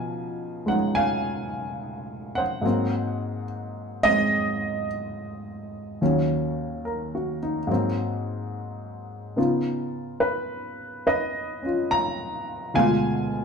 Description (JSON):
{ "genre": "solo jazz", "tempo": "71 BPM", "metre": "4/4", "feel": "swing 68% on 8ths", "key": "unclear", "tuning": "A4 = 440 Hz", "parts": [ { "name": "warm baby grand piano", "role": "solo", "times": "0.0-13.4 s", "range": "D2 to Bb5", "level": "-24 LUFS", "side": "equal", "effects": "none" } ], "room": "wet studio reverb, RT60 0.8 s", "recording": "heard from further back in the room", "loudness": "-23 LUFS", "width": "side -6 dB against mid", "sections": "0.0-13.4 A section", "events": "none", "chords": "0.0 Db9; 2.6 Ab9; 6.0 Ebm7; 7.7 Ab9; 9.4 Db9; 12.7 Ddim7" }